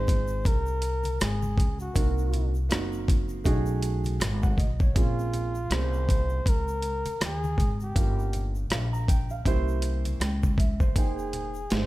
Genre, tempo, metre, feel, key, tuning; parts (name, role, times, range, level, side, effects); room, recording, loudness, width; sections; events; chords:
hip hop, jazz-hop; 80 BPM; 4/4; swing 58% on 16ths; F minor; A4 = 435 Hz
mellow flugelhorn; melody; 0.0-11.9 s; F4 to C5; -33 LUFS; equal
dark baby grand piano; accompaniment; 0.0-11.9 s; Ab3 to Bb5; -34 LUFS; right 5 dB
upright bass; bass; 0.0-11.9 s; F1 to Eb2; -28 LUFS; equal
dusty soul sampler-style drum kit; drums; 0.1-11.9 s; hi-hat, kick drum, rim click, snare drum; -25 LUFS; equal; overdrive
congas and tube shaker; percussion; 0.1-11.9 s; -41 LUFS; left 2 dB
little or no reverb; -24 LUFS; side -17 dB against mid
0.0-11.9 A section
0.0 Fm7; 2.0 Cm7b5; 3.5 B13; 5.0 Bbm9; 8.0 Gm7b5; 9.5 C7b9; 11.0 Fm11